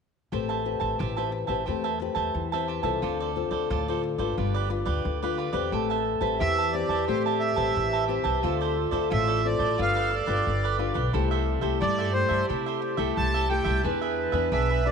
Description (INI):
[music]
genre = samba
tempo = 89 BPM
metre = 4/4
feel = straight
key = A minor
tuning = A4 = 440 Hz
[part]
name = cavaquinho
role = accompaniment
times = 0.3-14.9 s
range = D4 to A5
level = -31 LUFS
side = right 9 dB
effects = none
[part]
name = nylon-string guitar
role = accompaniment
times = 0.3-14.9 s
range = A2 to B4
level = -30 LUFS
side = left 10 dB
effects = none
[part]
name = upright bass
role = bass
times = 0.3-14.9 s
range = G1 to C3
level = -30 LUFS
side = equal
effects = none
[part]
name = mellow clarinet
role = second line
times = 5.7-14.9 s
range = F4 to B4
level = -31 LUFS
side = right 5 dB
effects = none
[part]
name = accordion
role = melody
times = 6.4-14.9 s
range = C5 to A5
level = -28 LUFS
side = right 2 dB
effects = tape echo
[sound]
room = moderate echo chamber reverb, RT60 1.8 s, studio reverb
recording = 1960s-style stereo with parts hard left and right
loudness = -24 LUFS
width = side -6 dB against mid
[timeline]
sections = 0.3-5.7 A section; 5.7-14.9 B section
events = none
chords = 0.3 Am9; 3.0 Dm7; 4.4 G7; 5.7 Am9; 8.4 Dm7; 9.8 G7; 11.1 C6; 13.8 E7